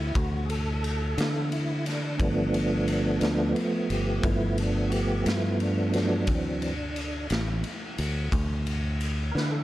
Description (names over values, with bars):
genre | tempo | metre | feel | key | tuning
slow blues | 59 BPM (dotted quarters) | 12/8 | straight | unclear | A4 = 440 Hz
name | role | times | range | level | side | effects
tonewheel organ | sustained chords | 0.0-9.6 s | E3 to B4 | -28 LUFS | right 1 dB | slow rotary speaker, chorus vibrato
fingered electric bass | bass | 0.0-9.6 s | G1 to D3 | -28 LUFS | equal | none
raw garage drum kit | drums | 0.1-9.5 s | kick drum, ride cymbal, snare drum | -31 LUFS | equal | none
room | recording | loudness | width
studio reverb | dark, warm production | -25 LUFS | side -15 dB against mid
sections
0.0-9.6 A section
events
tonewheel organ solo 0.0-9.6; drum fill 9.3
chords
0.0 Dadd9; 2.2 G9; 6.3 D9